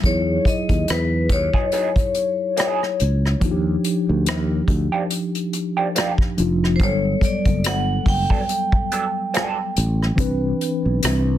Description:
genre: R&B, neo-soul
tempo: 71 BPM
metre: 4/4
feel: swing 56% on 16ths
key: unclear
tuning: A4 = 441 Hz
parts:
  - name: mellow tine electric piano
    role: accompaniment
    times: 0.0-11.4 s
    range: E3 to B4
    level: -24 LUFS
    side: left 1 dB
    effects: medium stereo tremolo
  - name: sustaining fretless electric bass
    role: bass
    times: 0.0-11.4 s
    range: E#1 to E2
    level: -21 LUFS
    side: equal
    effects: none
  - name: unplugged drum kit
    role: drums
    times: 0.0-11.3 s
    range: hi-hat, kick drum, rim click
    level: -21 LUFS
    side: equal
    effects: soft clipping on snare
  - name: vibraphone with hard mallets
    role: melody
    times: 0.1-9.7 s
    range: B4 to G5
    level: -24 LUFS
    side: left 2 dB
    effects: tape echo
  - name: electric guitar through a small old amp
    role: second line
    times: 1.5-9.6 s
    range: E#3 to A4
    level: -24 LUFS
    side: right 5 dB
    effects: wah
room: light reverb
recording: dense, heavily limited modern master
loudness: -18 LUFS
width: side -12 dB against mid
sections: 0.0-11.4 A section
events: none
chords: 0.0 Emaj9; 3.4 D#maj9; 6.8 Gmaj9; 10.2 Cmaj9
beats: | 0.04 0.88 1.73 2.57 | 3.42 4.26 5.11 5.95 | 6.80 7.64 8.49 9.33 | 10.18 11.02

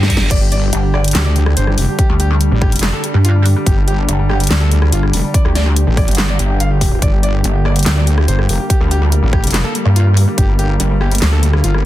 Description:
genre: heavy wobble dubstep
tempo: 143 BPM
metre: 4/4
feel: half-time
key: G minor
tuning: A4 = 438 Hz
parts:
  - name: supersaw pad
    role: sustained chords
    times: 0.0-11.9 s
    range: D3 to G4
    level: -23 LUFS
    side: right 1 dB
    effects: sidechain pumping, low-pass filter
  - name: wobble bass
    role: bass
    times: 0.0-11.8 s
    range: F1 to G2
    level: -14 LUFS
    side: equal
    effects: chorus, overdrive
  - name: dubstep drum kit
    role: drums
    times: 0.0-11.8 s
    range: crash cymbal, handclaps, hi-hat, rim click, snare drum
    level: -20 LUFS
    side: left 1 dB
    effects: none
  - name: electronic kick drum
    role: drums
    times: 0.1-10.5 s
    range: none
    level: -14 LUFS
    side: equal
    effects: none
  - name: bright grand piano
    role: melody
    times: 0.3-11.8 s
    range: G3 to F5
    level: -23 LUFS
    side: left 2 dB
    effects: dub echo
  - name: pulsing pluck wobble bass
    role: bass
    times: 0.7-11.2 s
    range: G1 to G2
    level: -13 LUFS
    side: equal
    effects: chorus, overdrive
room: little or no reverb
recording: dense, heavily limited modern master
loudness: -11 LUFS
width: side -14 dB against mid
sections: 0.0-11.9 A section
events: drum fill 0.0-0.3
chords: 0.0 G5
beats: | 0.31 0.73 1.15 1.57 | 1.99 2.41 2.83 3.25 | 3.67 4.08 4.50 4.92 | 5.34 5.76 6.18 6.60 | 7.02 7.44 7.86 8.28 | 8.70 9.12 9.54 9.96 | 10.38 10.80 11.22 11.64

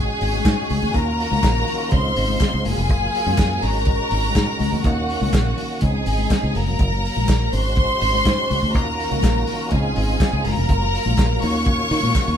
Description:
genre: disco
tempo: 123 BPM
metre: 4/4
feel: straight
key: Eb dorian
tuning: A4 = 440 Hz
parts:
  - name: clear symphonic string section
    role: second line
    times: 0.0-12.4 s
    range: Gb4 to Db6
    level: -23 LUFS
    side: left 1 dB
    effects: none
  - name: tonewheel organ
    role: sustained chords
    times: 0.0-12.4 s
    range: Db3 to Gb4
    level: -28 LUFS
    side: right 1 dB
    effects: overdrive, chorus vibrato, slow rotary speaker
  - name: fingered electric bass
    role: bass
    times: 0.0-12.4 s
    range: F1 to Eb3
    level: -22 LUFS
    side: equal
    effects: none
  - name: warm soul drum kit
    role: drums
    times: 0.2-12.3 s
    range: hi-hat, kick drum, snare drum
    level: -22 LUFS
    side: equal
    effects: none
  - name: congas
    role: percussion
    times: 0.3-12.3 s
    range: none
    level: -31 LUFS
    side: left 6 dB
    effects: none
  - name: group handclap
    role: percussion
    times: 0.5-12.3 s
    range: none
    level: -36 LUFS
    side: left 1 dB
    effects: none
room: moderate studio reverb, RT60 0.9 s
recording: band playing live in one room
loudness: -17 LUFS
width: side -9 dB against mid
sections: 0.0-12.4 A section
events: drum fill 12.2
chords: 0.0 Ab7sus4; 0.9 Ebm7; 1.9 Dbmaj7; 2.7 Gbmaj9; 3.6 Ab9sus4; 4.8 Ebm7; 5.8 Db5; 6.6 Gb; 7.5 Ab7sus4; 8.7 Ebm7; 9.7 Dbmaj7; 10.4 Gbmaj7; 11.4 Ebm7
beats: 0.45 | 0.94 1.43 1.92 2.41 | 2.90 3.38 3.87 4.36 | 4.85 5.33 5.82 6.31 | 6.80 7.28 7.77 8.26 | 8.74 9.23 9.72 10.21 | 10.69 11.18 11.67 12.15

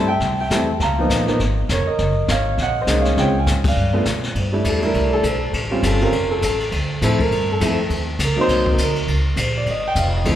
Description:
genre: jazz piano trio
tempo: 203 BPM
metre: 4/4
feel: swing 60% on 8ths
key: unclear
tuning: A4 = 435 Hz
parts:
  - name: warm concert grand piano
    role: melody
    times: 0.0-10.4 s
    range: F3 to Bb5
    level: -20 LUFS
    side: equal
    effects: none
  - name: upright bass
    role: bass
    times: 0.0-10.4 s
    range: F1 to B2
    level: -21 LUFS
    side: equal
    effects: none
  - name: jazz brush drum kit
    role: drums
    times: 0.2-10.3 s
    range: brushed snare drum, crash cymbal, hi-hat, kick drum, ride cymbal, snare drum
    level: -24 LUFS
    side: left 2 dB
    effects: none
room: wet church reverb, RT60 2.6 s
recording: recorded in a church or concert hall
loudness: -17 LUFS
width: side -11 dB against mid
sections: 0.0-4.4 A section; 4.4-10.4 B section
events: band accent 3.6; grand piano solo 4.4-10.4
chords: 0.0 Am7; 0.8 Db13; 2.0 Gb6; 3.2 Dbmaj7#11; 3.8 G7; 4.4 C6; 5.5 A7alt; 6.7 Dm9; 7.9 Ebm7; 8.5 Cm9b5; 9.1 Db6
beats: 0.21 0.51 | 0.80 1.10 1.40 1.69 | 1.99 2.28 2.58 2.88 | 3.17 3.47 3.76 4.06 | 4.35 4.65 4.95 5.24 | 5.54 5.83 6.13 6.42 | 6.72 7.01 7.31 7.61 | 7.90 8.20 8.49 8.79 | 9.08 9.38 9.67 9.97 | 10.26

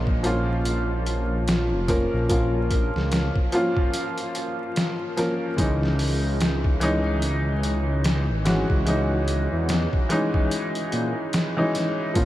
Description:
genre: trip hop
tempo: 73 BPM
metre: 4/4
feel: swing 58% on 16ths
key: unclear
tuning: A4 = 440 Hz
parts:
  - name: warm upright piano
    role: accompaniment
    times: 0.0-12.2 s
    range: Fb3 to Bb4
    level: -24 LUFS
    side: equal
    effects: harmonic tremolo, vintage 12-bit sampler grit, tape echo
  - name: dark detuned saw bass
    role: bass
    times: 0.0-12.2 s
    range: F1 to Bb2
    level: -24 LUFS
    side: equal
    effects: none
  - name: trip hop sampler-style drum kit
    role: drums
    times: 0.1-12.2 s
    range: hi-hat, kick drum, snare drum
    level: -26 LUFS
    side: equal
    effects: studio reverb
room: moderate huge ambient reverb, RT60 8.6 s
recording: dreamy mix soaked in reverb, vinyl crackle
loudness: -21 LUFS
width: side -14 dB against mid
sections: 0.0-12.2 A section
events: none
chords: 0.0 Bbm; 5.6 Dbmadd9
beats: 0.65 1.47 | 2.29 3.12 3.94 4.76 | 5.58 6.41 7.23 8.05 | 8.87 9.69 10.51 11.34 | 12.16

